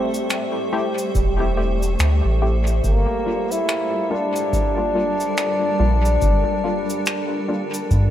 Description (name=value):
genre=ambient dub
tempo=71 BPM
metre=4/4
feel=swing 59% on 16ths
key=G dorian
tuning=A4 = 440 Hz
part: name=trombone with cup mute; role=melody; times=0.0-8.1 s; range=Bb3 to E4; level=-23 LUFS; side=left 1 dB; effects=dub echo
part: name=granular cloud pad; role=sustained chords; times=0.0-8.1 s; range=G3 to E5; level=-27 LUFS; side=right 1 dB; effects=built-in reverb
part: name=filtered dub chord stab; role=stabs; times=0.0-7.7 s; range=G3 to G4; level=-28 LUFS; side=left 2 dB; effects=chorus, dub echo
part: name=wind-like tuned noise texture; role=texture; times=0.0-8.1 s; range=G3 to G4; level=-29 LUFS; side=right 1 dB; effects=built-in reverb
part: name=cabasa and finger snaps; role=drums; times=0.1-8.1 s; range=none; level=-27 LUFS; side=equal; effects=dub echo
part: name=soft dub sub bass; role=bass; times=1.1-8.1 s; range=E1 to G2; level=-18 LUFS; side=equal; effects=none
part: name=electronic kick drum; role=drums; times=1.1-8.1 s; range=none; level=-24 LUFS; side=equal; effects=none
room=light reverb, studio reverb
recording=none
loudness=-18 LUFS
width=side -11 dB against mid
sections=0.0-8.1 A section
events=none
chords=0.0 Am7; 2.8 Gm7